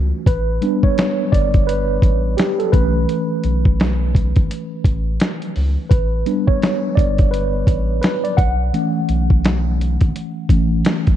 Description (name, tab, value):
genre	lo-fi hip hop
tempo	85 BPM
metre	4/4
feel	swing 63% on 16ths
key	unclear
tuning	A4 = 439 Hz
part	mellow tine electric piano	accompaniment	0.0-11.2 s	E3 to F#5	-20 LUFS	right 1 dB	medium stereo tremolo
part	soft dub sub bass	bass	0.0-10.8 s	G1 to C#2	-20 LUFS	equal	none
part	dusty soul sampler-style drum kit	drums	0.3-11.2 s	hi-hat, kick drum, snare drum	-16 LUFS	equal	none
room	light reverb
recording	cassette tape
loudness	-15 LUFS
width	side -11 dB against mid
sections	0.0-11.2 A section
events	tine electric piano solo 0.0-11.2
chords	0.3 A9sus4; 2.7 B9sus4; 5.9 A9sus4; 8.4 B9sus4